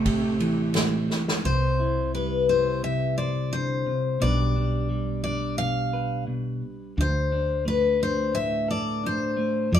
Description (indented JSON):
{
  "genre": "acoustic folk-pop ballad",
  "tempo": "87 BPM",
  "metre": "4/4",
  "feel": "straight",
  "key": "unclear",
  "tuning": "A4 = 440 Hz",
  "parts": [
    { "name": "picked steel-string acoustic guitar", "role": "melody", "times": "0.0-9.8 s", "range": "B4 to F5", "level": "-26 LUFS", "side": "left 4 dB", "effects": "none" },
    { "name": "clean electric guitar", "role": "accompaniment", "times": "0.0-9.8 s", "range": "A2 to C5", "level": "-27 LUFS", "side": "right 1 dB", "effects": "none" },
    { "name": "rich symphonic string section", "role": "sustained chords", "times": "0.0-1.4 s", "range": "C3 to G4", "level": "-34 LUFS", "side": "equal", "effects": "none" },
    { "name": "woody fretless electric bass", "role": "bass", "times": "0.0-9.8 s", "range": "A1 to F2", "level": "-28 LUFS", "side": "equal", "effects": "none" },
    { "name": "unplugged drum kit", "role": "drums", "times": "0.1-1.4 s", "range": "kick drum, ride cymbal, snare drum", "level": "-27 LUFS", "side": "right 1 dB", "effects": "none" }
  ],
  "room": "moderate studio reverb, RT60 0.8 s",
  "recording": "band playing live in one room",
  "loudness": "-23 LUFS",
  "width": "side -10 dB against mid",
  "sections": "0.0-1.4 A section; 1.4-9.8 B section",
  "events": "drum fill 1.1-1.4",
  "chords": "0.0 Am7; 1.4 C; 4.2 G/B; 7.0 D5",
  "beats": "0.06 0.75 | 1.45 2.14 2.84 3.53 | 4.22 4.91 5.59 6.28 | 6.97 7.66 8.34 9.03 | 9.72"
}